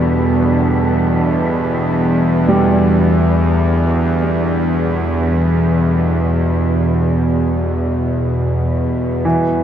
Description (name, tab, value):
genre	dark ambient drone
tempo	free time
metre	none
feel	none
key	unclear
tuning	A4 = 440 Hz
part	deep dark ambient pad	sustained chords	0.0-9.6 s	E2 to B4	-24 LUFS	right 1 dB	none
part	clear concert grand piano	arpeggios	0.0-9.6 s	E2 to G3	-21 LUFS	right 1 dB	none
part	bowed-like drone	drone	0.0-9.6 s	E2 to B2	-14 LUFS	equal	built-in reverb
part	wind-like tuned noise texture	texture	0.0-9.6 s	B4	-32 LUFS	right 1 dB	built-in reverb
room	wet cathedral reverb, RT60 6.7 s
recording	dark, warm production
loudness	-13 LUFS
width	side -9 dB against mid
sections	0.0-9.2 A section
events	fade-out on synth texture 0.0-9.2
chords	0.0 Gadd9/E